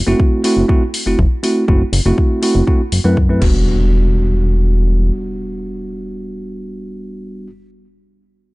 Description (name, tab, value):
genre	nu-disco, nu disco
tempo	121 BPM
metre	4/4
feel	straight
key	E minor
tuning	A4 = 440 Hz
part	chorused synth bass	bass	0.0-5.1 s	E1 to F#2	-14 LUFS	equal	none
part	bell-like tine electric piano	accompaniment	0.1-7.5 s	G3 to B4	-18 LUFS	right 1 dB	sidechain pumping, low-pass filter, analog delay
part	electronic kick drum	drums	0.2-3.5 s	none	-14 LUFS	equal	studio reverb
part	house drum kit	drums	0.4-3.5 s	crash cymbal, hi-hat	-24 LUFS	left 3 dB	studio reverb
part	impact	sound effects	3.4-7.5 s	none	-26 LUFS	equal	none
room	little or no reverb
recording	dry, gritty hardware recording, transformer saturation, nothing above 10.4 kHz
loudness	-12 LUFS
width	side -22 dB against mid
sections	0.0-3.7 A section; 3.7-7.6 B section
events	filter sweep on tine electric piano 0.0-3.7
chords	0.0 F#m7b5; 3.4 Em7